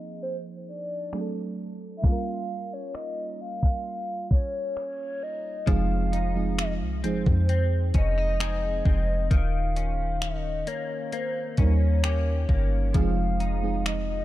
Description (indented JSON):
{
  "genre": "contemporary R&B",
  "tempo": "66 BPM",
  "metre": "4/4",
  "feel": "straight",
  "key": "F minor",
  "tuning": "A4 = 440 Hz",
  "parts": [
    { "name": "hollow clarinet-like synth lead", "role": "melody", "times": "0.0-14.2 s", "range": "C5 to F5", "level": "-32 LUFS", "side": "equal", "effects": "chorus, tape echo" },
    { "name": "mellow FM electric piano", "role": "accompaniment", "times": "0.0-14.2 s", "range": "F3 to Bb4", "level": "-32 LUFS", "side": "right 5 dB", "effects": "chorus" },
    { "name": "gated 80s digital drum machine", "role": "drums", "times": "1.1-14.1 s", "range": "finger snaps, hi-hat, kick drum", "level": "-24 LUFS", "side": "equal", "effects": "none" },
    { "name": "direct-recorded clean electric guitar", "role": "arpeggios", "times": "5.7-14.2 s", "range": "Eb3 to Ab4", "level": "-35 LUFS", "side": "left 8 dB", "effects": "analog chorus" },
    { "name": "warm 808-style bass", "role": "bass", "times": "5.7-14.2 s", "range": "Eb1 to F2", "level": "-25 LUFS", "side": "equal", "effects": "none" }
  ],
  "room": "little or no reverb",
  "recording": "dark, warm production, low-pass filter",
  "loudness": "-24 LUFS",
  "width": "side -15 dB against mid",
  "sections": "0.0-5.7 A section; 5.7-14.2 B section",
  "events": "filter sweep 0.0-5.7",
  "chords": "0.0 Ab69; 1.1 D7; 2.0 Gm7b5; 5.7 Fm7; 9.3 Eb7; 12.9 Fm7"
}